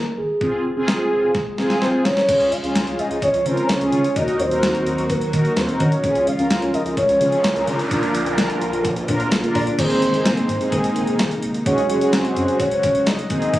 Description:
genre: synth-pop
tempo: 128 BPM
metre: 4/4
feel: straight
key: unclear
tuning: A4 = 440 Hz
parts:
  - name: soft octave-layered synth lead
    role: melody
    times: 0.0-13.6 s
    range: Ab4 to F5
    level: -21 LUFS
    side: equal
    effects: chorus, phaser, slapback echo
  - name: round analog bass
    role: bass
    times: 0.0-13.6 s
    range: F1 to Eb3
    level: -28 LUFS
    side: equal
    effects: none
  - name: mellow synth brass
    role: accompaniment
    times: 0.4-13.6 s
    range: Ab3 to Bb4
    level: -23 LUFS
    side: equal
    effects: chorus, phaser
  - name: clean 12-bit digital drum machine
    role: drums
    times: 0.4-13.6 s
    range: crash cymbal, hi-hat, kick drum, snare drum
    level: -24 LUFS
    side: equal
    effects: none
  - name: string machine, cellos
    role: sustained chords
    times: 2.3-13.6 s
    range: C3 to Gb4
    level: -26 LUFS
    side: equal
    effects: ensemble chorus
  - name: noise sweep and impact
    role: sound effects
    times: 6.9-11.7 s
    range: none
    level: -30 LUFS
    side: right 1 dB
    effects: none
room: light reverb, digital ambience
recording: recorded on a phone in the room, club reverb, compression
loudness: -17 LUFS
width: side -15 dB against mid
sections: 0.0-2.3 A section; 2.3-9.8 B section; 9.8-13.6 C section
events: drum fill 1.3-2.3; noise sweep 6.9-9.8; impact 9.8-11.7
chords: 0.4 Fm; 2.3 Db; 4.2 Ebm; 6.0 Db; 7.9 Bb; 9.8 Abadd9; 11.7 Gbsus2

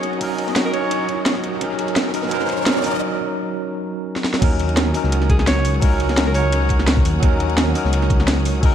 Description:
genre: liquid drum and bass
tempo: 171 BPM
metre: 4/4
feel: swing 53% on 16ths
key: Eb minor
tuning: A4 = 440 Hz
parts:
  - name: clear alto saxophone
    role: melody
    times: 0.0-1.2, 5.3-6.8 s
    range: Ab4 to Db5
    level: -27 LUFS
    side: right 1 dB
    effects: ping-pong delay
  - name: tine electric piano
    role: accompaniment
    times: 0.0-8.7 s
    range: Gb3 to Bb4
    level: -22 LUFS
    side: right 1 dB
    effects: slow stereo tremolo, ping-pong delay
  - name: rich symphonic string section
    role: sustained chords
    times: 0.0-8.7 s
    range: Db4 to Eb6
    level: -32 LUFS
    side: equal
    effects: none
  - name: crunchy breakbeat drum kit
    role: drums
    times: 0.0-8.7 s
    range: hi-hat, ride cymbal, snare drum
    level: -28 LUFS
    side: equal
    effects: high-pass filter on cymbals, small room ambience, high-pass filter on hats, high-pass filter on snare, high-pass filter on room
  - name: drum and bass drum kit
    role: drums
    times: 0.0-8.7 s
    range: crash cymbal, hi-hat, snare drum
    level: -23 LUFS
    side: equal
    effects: small room ambience
  - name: riser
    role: sound effects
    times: 0.0-3.0 s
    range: none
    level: -28 LUFS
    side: right 1 dB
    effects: none
  - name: electronic kick drum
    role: drums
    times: 0.2-8.7 s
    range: none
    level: -18 LUFS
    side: equal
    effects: high-pass filter on kick, small room ambience
  - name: dark detuned saw bass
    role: bass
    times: 4.4-8.7 s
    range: Db2 to Eb2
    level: -19 LUFS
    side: equal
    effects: tube saturation
room: moderate digital room reverb, RT60 1.1 s, small room ambience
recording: dark, warm production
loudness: -16 LUFS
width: side -9 dB against mid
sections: 0.0-4.4 A section; 4.4-8.7 B section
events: build-up 0.0-4.4; riser 0.0-3.0; break 3.0-4.4; drum fill 4.2; drop 4.4-8.7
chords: 0.0 Ebm7

